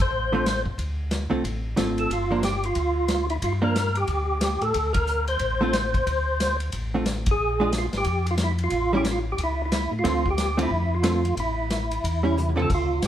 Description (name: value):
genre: soul jazz organ trio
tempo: 181 BPM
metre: 4/4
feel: swing 62% on 8ths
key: D minor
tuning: A4 = 440 Hz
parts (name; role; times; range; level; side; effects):
- percussive tonewheel organ; melody; 0.0-13.0 s; E4 to C5; -25 LUFS; equal; slow rotary speaker, overdrive, chorus vibrato
- mellow tonewheel organ; bass; 0.0-13.1 s; G1 to A2; -27 LUFS; equal; slow rotary speaker
- vintage drum kit; drums; 0.0-13.1 s; crash cymbal, hi-hat, kick drum, ride cymbal, snare drum, toms; -29 LUFS; equal; none
- hollow-body jazz guitar; accompaniment; 0.3-12.7 s; D3 to A4; -26 LUFS; right 1 dB; none
room: moderate studio reverb, RT60 0.9 s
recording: band playing live in one room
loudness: -22 LUFS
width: side -11 dB against mid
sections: 0.0-12.7 A section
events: band accent 4.9, 7.2; drum fill 12.4-12.7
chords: 0.0 Dm7; 2.1 Gm7; 4.7 D7(no3); 7.4 Bb7(no3); 8.7 A7; 10.0 Dm7; 11.4 A5